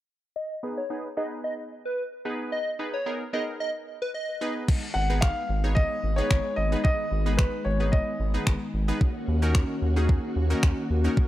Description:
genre	dance-pop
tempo	111 BPM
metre	4/4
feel	straight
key	G# minor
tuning	A4 = 440 Hz
part	plucky unison lead	melody	0.4-4.5 s	B4 to D#5	-31 LUFS	equal	low-pass filter, tape echo
part	wavetable chord stab	accompaniment	0.6-11.3 s	B3 to C#5	-33 LUFS	right 1 dB	sidechain pumping, low-pass filter
part	ensemble organ-string	sustained chords	4.7-11.3 s	D#3 to F#4	-32 LUFS	left 1 dB	ensemble chorus, sidechain pumping
part	clean 12-bit digital drum machine	drums	4.7-11.3 s	crash cymbal, finger snaps, kick drum	-23 LUFS	equal	none
part	warm concert grand piano	melody	4.9-8.4 s	B4 to F#5	-29 LUFS	left 1 dB	tape echo
part	round analog bass	bass	5.0-11.1 s	G#1 to D#2	-25 LUFS	equal	sidechain pumping
room	light reverb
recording	dry, gritty hardware recording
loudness	-24 LUFS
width	side -14 dB against mid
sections	0.4-4.7 A section; 4.7-11.3 B section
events	filter sweep 0.4-4.7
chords	0.4 G#m; 9.0 D#m7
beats	| 0.36 0.90 1.44 1.98 | 2.52 3.06 3.60 4.14 | 4.68 5.23 5.77 6.31 | 6.85 7.39 7.93 8.47 | 9.01 9.55 10.09 10.63 | 11.17

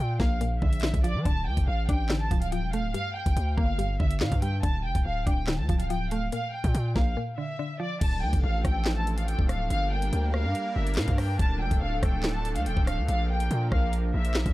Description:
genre	hip hop, drill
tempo	142 BPM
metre	4/4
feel	half-time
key	D minor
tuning	A4 = 439 Hz
part	rich studio violin section	melody	0.0-14.5 s	D5 to A5	-33 LUFS	equal	low-pass filter, tape echo
part	mallet-like synth pluck	accompaniment	0.0-8.0 s	G2 to D4	-33 LUFS	left 1 dB	chorus, low-pass filter
part	distorted 808-style bass	bass	0.0-14.5 s	D1 to F3	-28 LUFS	equal	distortion
part	drill drum kit	drums	0.2-14.5 s	crash cymbal, handclaps, hi-hat, kick drum, rim click, snare drum	-27 LUFS	equal	none
part	sweeping resonant pad	sustained chords	8.0-14.5 s	F3 to Bb4	-35 LUFS	right 1 dB	chorus
room	little or no reverb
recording	dark, warm production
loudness	-24 LUFS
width	side -17 dB against mid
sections	0.0-8.0 A section; 8.0-14.5 B section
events	break 7.2-8.0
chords	0.0 Bb; 1.3 Dm; 2.9 Gm; 4.6 Dm; 6.3 Bb; 8.0 Dm; 9.7 Gm; 11.4 Dm; 13.1 Bb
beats	0.41 0.83 | 1.25 1.68 2.10 2.52 | 2.94 3.37 3.79 4.21 | 4.63 5.06 5.48 5.90 | 6.32 6.75 7.17 7.59 | 8.01 8.44 8.86 9.28 | 9.70 10.13 10.55 10.97 | 11.39 11.82 12.24 12.66 | 13.09 13.51 13.93 14.35

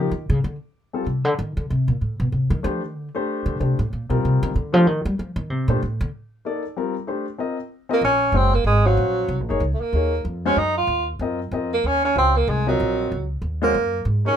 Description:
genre	modal jazz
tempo	189 BPM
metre	3/4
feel	swing 61% on 8ths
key	C dorian, Eb dorian from 8.0 s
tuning	A4 = 440 Hz
part	warm grand piano	accompaniment	0.0-14.4 s	G3 to F5	-25 LUFS	left 4 dB	none
part	upright bass	bass	0.0-14.4 s	Gb1 to G3	-22 LUFS	equal	none
part	mellow tenor saxophone	melody	7.9-14.4 s	Gb3 to F4	-20 LUFS	right 2 dB	none
room	light reverb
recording	minimal, uncompressed stereo recording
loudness	-19 LUFS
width	side -9 dB against mid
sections	0.4-8.0 A section; 8.0-14.4 B section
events	upright bass solo 0.0-8.0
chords	0.4 Cm69; 6.1 Bbadd9; 8.0 Ebm11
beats	0.09 | 0.41 0.73 1.04 | 1.36 1.68 2.00 | 2.31 2.63 2.95 | 3.26 3.58 3.90 | 4.21 4.53 4.85 | 5.17 5.48 5.80 | 6.12 6.43 6.75 | 7.07 7.38 7.70 | 8.02 8.34 8.65 | 8.97 9.29 9.61 | 9.93 10.24 10.56 | 10.88 11.20 11.52 | 11.83 12.15 12.47 | 12.79 13.11 13.42 | 13.74 14.06

